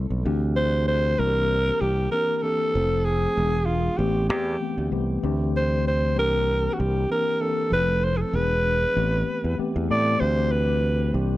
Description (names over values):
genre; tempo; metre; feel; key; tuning
lush 1970s-style soul; 96 BPM; 4/4; swing 54% on 16ths; unclear; A4 = 440 Hz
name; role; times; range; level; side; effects
mellow tine electric piano; accompaniment; 0.0-11.4 s; E3 to C5; -28 LUFS; left 2 dB; medium stereo tremolo
fingered electric bass; bass; 0.0-11.4 s; E1 to A2; -24 LUFS; equal; none
breathy alto saxophone; melody; 0.6-11.1 s; F4 to D5; -24 LUFS; equal; none
room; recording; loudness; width
light reverb, small room ambience; none; -21 LUFS; side -16 dB against mid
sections
0.2-11.4 A section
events
none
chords
0.2 D9sus4; 1.2 C9; 2.7 Fmaj7; 3.4 E7; 4.0 Am9; 5.2 D9sus4; 6.2 C9; 7.7 Fmaj7; 8.3 E7; 9.0 Am9; 10.2 D9sus4